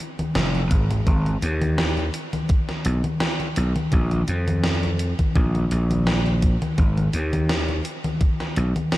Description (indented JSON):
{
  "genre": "vaporwave",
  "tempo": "84 BPM",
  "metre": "4/4",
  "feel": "swing 54% on 16ths",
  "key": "unclear",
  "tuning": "A4 = 442 Hz",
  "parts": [
    { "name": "gated 80s digital drum machine", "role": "drums", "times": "0.0-9.0 s", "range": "congas, hi-hat, snare drum", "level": "-25 LUFS", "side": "equal", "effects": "gated reverb, gated reverb snare" },
    { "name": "gritty slap bass", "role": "bass", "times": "0.2-8.7 s", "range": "F1 to F2", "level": "-21 LUFS", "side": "equal", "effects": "overdrive" },
    { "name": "electronic kick drum", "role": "drums", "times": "0.7-8.4 s", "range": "none", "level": "-19 LUFS", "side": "equal", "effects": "none" }
  ],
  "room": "light reverb",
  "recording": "none",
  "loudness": "-20 LUFS",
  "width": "side -16 dB against mid",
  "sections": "0.0-9.0 A section",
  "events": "none",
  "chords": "none"
}